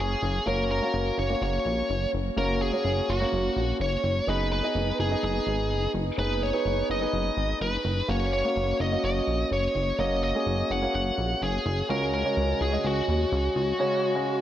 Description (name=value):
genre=1980s-style pop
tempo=126 BPM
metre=4/4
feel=straight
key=F# major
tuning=A4 = 440 Hz
part: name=bluesy overdriven lead guitar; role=melody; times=0.0-14.4 s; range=F#4 to F#5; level=-28 LUFS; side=equal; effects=distortion, shimmer reverb
part: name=warm concert grand piano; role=accompaniment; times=0.0-14.4 s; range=C#3 to D#5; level=-28 LUFS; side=equal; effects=shimmer reverb
part: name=chorused synth bass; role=bass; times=0.0-13.7 s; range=F#1 to D#2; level=-28 LUFS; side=equal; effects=none
room=moderate lush hall reverb, RT60 2.8 s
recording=none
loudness=-24 LUFS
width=side -11 dB against mid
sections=0.5-14.4 A section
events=none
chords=0.5 F#; 4.3 G#m/F#; 8.1 F#; 11.9 C#sus4